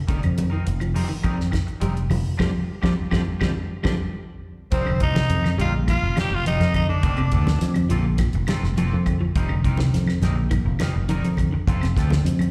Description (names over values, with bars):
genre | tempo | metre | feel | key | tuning
afrobeat | 104 BPM | 4/4 | straight | F mixolydian | A4 = 440 Hz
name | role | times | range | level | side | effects
clean electric guitar | arpeggios | 0.1-12.3 s | C3 to G3 | -31 LUFS | equal | slapback echo
electric guitar at the edge of break-up | stabs | 0.1-12.4 s | G3 to Bb4 | -37 LUFS | equal | subtle chorus, slapback echo
fingered electric bass | bass | 0.1-12.5 s | F1 to F2 | -24 LUFS | equal | none
damped 70s drum kit | drums | 0.1-12.5 s | hi-hat, kick drum, snare drum | -29 LUFS | equal | none
claves | percussion | 0.2-12.5 s | none | -40 LUFS | equal | slapback echo
congas | percussion | 0.4-12.5 s | none | -30 LUFS | equal | none
raspy tenor saxophone | melody | 4.7-7.7 s | C4 to G4 | -28 LUFS | equal | none
clear trumpet | second line | 4.7-7.7 s | C5 to G5 | -37 LUFS | equal | none
room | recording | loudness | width
little or no reverb | live gig heard through the venue's PA, recital hall reverb | -22 LUFS | mono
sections
0.0-4.7 A section; 4.7-12.5 B section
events
band accent 2.4-4.7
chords
0.1 F9sus4; 2.4 G5/F; 4.7 F9sus4; 7.0 Gm11/F (rootless); 9.3 F9sus4; 11.7 Gm11/F (rootless)